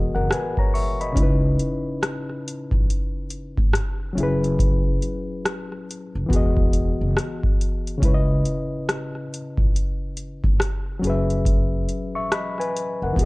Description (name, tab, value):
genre	lo-fi hip hop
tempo	70 BPM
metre	4/4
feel	swing 62% on 16ths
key	C# minor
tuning	A4 = 440 Hz
part	overdriven reed electric piano	accompaniment	0.0-13.3 s	C#3 to C#6	-26 LUFS	left 2 dB	cassette tape, low-pass filter
part	upright bass	bass	0.0-13.3 s	E1 to C#2	-24 LUFS	equal	none
part	booming analog drum machine	drums	0.3-13.3 s	hi-hat, kick drum, rim click	-22 LUFS	equal	none
room	digital ambience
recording	none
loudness	-20 LUFS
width	side -23 dB against mid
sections	0.0-13.3 A section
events	none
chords	0.0 Emaj9; 1.2 C#m9; 4.2 F#7sus4; 6.3 Emaj9; 8.0 C#m9; 11.0 F#7sus4